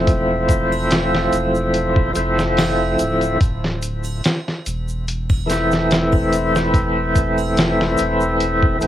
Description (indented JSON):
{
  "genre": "trip hop",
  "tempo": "72 BPM",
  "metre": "4/4",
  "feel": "swing 53% on 16ths",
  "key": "D minor",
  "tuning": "A4 = 436 Hz",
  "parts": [
    { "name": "overdriven tonewheel organ", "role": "accompaniment", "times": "0.0-8.9 s", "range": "E3 to E4", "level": "-18 LUFS", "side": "equal", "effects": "slow rotary speaker, tremolo, cassette tape, tape echo" },
    { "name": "warm sub bass", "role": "bass", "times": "0.0-8.9 s", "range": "D1 to F1", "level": "-24 LUFS", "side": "equal", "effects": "none" },
    { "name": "dusty soul sampler-style drum kit", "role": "drums", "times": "0.1-8.9 s", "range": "hi-hat, kick drum, snare drum", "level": "-19 LUFS", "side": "equal", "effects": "studio reverb, cassette tape" },
    { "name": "egg shaker and triangle", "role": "percussion", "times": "0.1-8.9 s", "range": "none", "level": "-37 LUFS", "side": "right 5 dB", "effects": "none" }
  ],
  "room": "moderate booth ambience, RT60 0.2 s",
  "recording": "home recording on cassette",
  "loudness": "-16 LUFS",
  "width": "side -12 dB against mid",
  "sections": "0.0-8.9 A section",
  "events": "none",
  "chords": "0.0 Dm9 (rootless); 3.4 Am/D",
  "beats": "| 0.07 0.91 1.74 2.57 | 3.41 4.24 5.07 5.91 | 6.74 7.57 8.41"
}